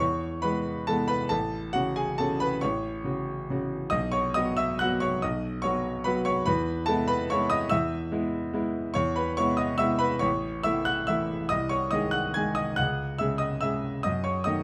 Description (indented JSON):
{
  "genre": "classical, piano waltz",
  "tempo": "141 BPM",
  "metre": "3/4",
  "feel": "uneven beats, rubato",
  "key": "E major, C# minor from 9.0 s",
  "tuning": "A4 = 440 Hz",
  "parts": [
    { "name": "clear grand piano", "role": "solo", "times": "0.0-14.6 s", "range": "A1 to G#6", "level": "-27 LUFS", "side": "equal", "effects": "none" }
  ],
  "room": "light reverb",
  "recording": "close, detailed microphones",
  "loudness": "-28 LUFS",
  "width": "mono",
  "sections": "0.0-14.6 A section",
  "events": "none",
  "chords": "0.0 E; 1.3 F#m/A; 3.9 B; 6.5 E; 10.2 A; 11.5 G#/B#; 12.8 C#m; 14.1 D#dim/F#"
}